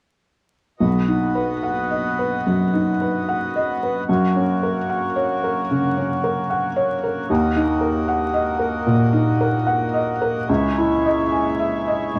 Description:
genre	neoclassical piano and strings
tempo	74 BPM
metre	4/4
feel	rubato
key	unclear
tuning	A4 = 440 Hz
part	felt-muted upright piano	accompaniment	0.8-12.2 s	B1 to G#5	-22 LUFS	equal	none
part	hand-pumped harmonium	sustained chords	0.8-12.2 s	G#3 to D#5	-27 LUFS	equal	none
room	wet small room reverb, RT60 0.5 s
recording	vinyl crackle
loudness	-20 LUFS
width	mono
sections	0.8-12.2 A section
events	none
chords	0.8 B; 4.1 F#; 7.3 D#m; 10.5 C#madd9

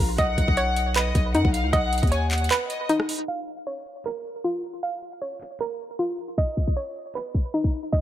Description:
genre	hip hop, trap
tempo	155 BPM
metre	4/4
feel	half-time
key	Bb phrygian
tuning	A4 = 441 Hz
part	hollow square pluck	arpeggios	0.0-8.0 s	D#4 to F5	-27 LUFS	right 1 dB	chorus, low-pass filter, digital delay
part	long sustained 808-style bass	bass	0.0-2.5 s	Bb1 to F#2	-25 LUFS	equal	none
part	warm studio violin section	second line	0.2-2.9 s	D#5 to Ab5	-28 LUFS	left 3 dB	digital delay
part	trap drum kit	drums	0.2-8.0 s	handclaps, hi-hat, kick drum, rim click	-24 LUFS	equal	none
part	swell	sound effects	7.9-8.0 s	none	barely audible	none	none
room	light reverb, digital ambience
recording	low-pass filter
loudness	-22 LUFS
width	side -12 dB against mid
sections	0.0-3.3 A section; 3.3-8.0 B section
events	break 2.5-3.3; filter sweep 3.3-8.0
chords	0.2 Badd9; 3.3 Bbm; 6.4 Badd9

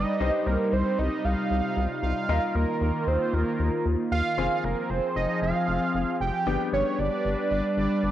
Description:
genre	synth-pop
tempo	115 BPM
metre	4/4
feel	straight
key	F minor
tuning	A4 = 440 Hz
part	fat analog lead	melody	0.0-8.1 s	Bb4 to G5	-28 LUFS	right 4 dB	chorus, phaser, cassette tape, tape echo
part	clear concert grand piano	accompaniment	0.0-8.1 s	B3 to C5	-34 LUFS	left 8 dB	cassette tape
part	phased analog pad	sustained chords	0.0-8.1 s	C3 to B4	-29 LUFS	left 1 dB	phaser, chorus, cassette tape
part	rubbery square bass	bass	0.0-8.1 s	F1 to Eb2	-27 LUFS	left 1 dB	none
room	moderate spring reverb, RT60 2.9 s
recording	home recording on cassette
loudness	-23 LUFS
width	side -12 dB against mid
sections	0.0-8.1 A section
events	none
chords	0.2 Cm; 2.3 Ebsus2; 4.4 Fm; 6.5 G

